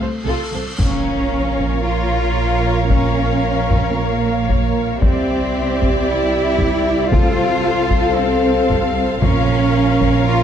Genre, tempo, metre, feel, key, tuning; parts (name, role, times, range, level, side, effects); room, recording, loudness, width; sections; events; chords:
cinematic, epic orchestral film score; 114 BPM; 4/4; straight; A4 = 440 Hz
warm symphonic violin section; melody; 0.0-10.4 s; A4 to F5; -29 LUFS; left 5 dB
warm symphonic violin section; second line; 0.0-10.4 s; F4 to D5; -26 LUFS; left 3 dB
rich symphonic viola section; accompaniment; 0.0-10.4 s; G4 to Bb4; -25 LUFS; right 3 dB
mellow French horn section; sustained chords; 0.0-10.4 s; A3 to F5; -26 LUFS; left 4 dB
rich studio cello section; bass; 0.0-10.4 s; C3 to F4; -20 LUFS; equal
warm symphonic double bass section; bass; 0.0-10.4 s; Bb1 to C2; -21 LUFS; right 4 dB
cymbal swell and impact; sound effects; 0.1-2.9 s; -26 LUFS; equal
clear symphonic string section; sustained chords; 0.8-10.4 s; Bb3 to F5; -25 LUFS; left 2 dB
taiko ensemble; drums; 0.8-10.4 s; -20 LUFS; left 1 dB
timpani; percussion; 7.1-7.9 s; C3; -28 LUFS; left 1 dB
moderate scoring stage reverb, RT60 1.7 s; dark, warm production; -14 LUFS; side -9 dB against mid
0.8-10.4 A section
cymbal swell 0.1-0.8; impact 0.8-2.9
0.0 F; 0.8 Bbm; 5.0 Cadd9; 7.1 F/C; 9.2 Bbm